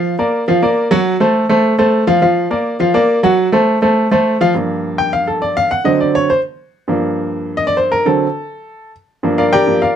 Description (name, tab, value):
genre	latin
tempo	206 BPM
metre	4/4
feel	straight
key	G minor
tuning	A4 = 440 Hz
part	bright upright piano	solo	0.0-10.0 s	G2 to G5	-12 LUFS	equal	none
room	moderate studio reverb, RT60 0.6 s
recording	dark, warm production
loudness	-12 LUFS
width	side -9 dB against mid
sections	0.0-4.5 A section; 4.5-10.0 B section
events	upright piano solo 4.5-10.0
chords	0.0 F#maj7#5/E#; 1.1 F; 2.2 F#maj7#5/E#; 3.4 F; 4.5 Gm7; 5.7 D7; 6.9 Gm7; 8.1 D7; 9.2 Gm7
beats	0.19 0.48 0.77 | 1.06 1.35 1.64 1.93 | 2.22 2.51 2.80 3.09 | 3.38 3.67 3.96 4.26 | 4.55 4.84 5.13 5.42 | 5.72 6.01 6.30 6.59 | 6.89 7.18 7.47 7.77 | 8.06 8.35 8.65 8.94 | 9.23 9.53 9.82